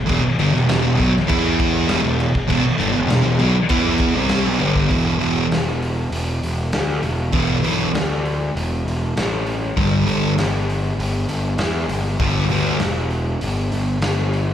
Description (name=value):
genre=garage rock duo or trio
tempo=99 BPM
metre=4/4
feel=straight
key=E minor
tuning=A4 = 441 Hz
part: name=thick fuzz guitar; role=riff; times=0.1-12.8 s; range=E2 to E4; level=-18 LUFS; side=equal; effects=distortion
part: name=fuzz picked electric bass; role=bass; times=0.1-14.5 s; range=E1 to E2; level=-22 LUFS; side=equal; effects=overdrive
part: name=raw garage drum kit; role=drums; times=0.1-14.5 s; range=crash cymbal, hi-hat, kick drum, snare drum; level=-23 LUFS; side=left 1 dB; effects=none
room=small room ambience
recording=live gig heard through the venue's PA, club reverb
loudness=-17 LUFS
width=side -10 dB against mid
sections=0.0-4.9 A section; 4.9-14.5 B section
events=none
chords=0.0 Em; 4.9 E5; 9.8 G5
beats=| 0.08 0.68 1.29 1.89 | 2.49 3.10 3.70 4.31 | 4.91 5.52 6.12 6.73 | 7.34 7.95 8.55 9.16 | 9.77 10.37 10.98 11.59 | 12.20 12.80 13.41 14.02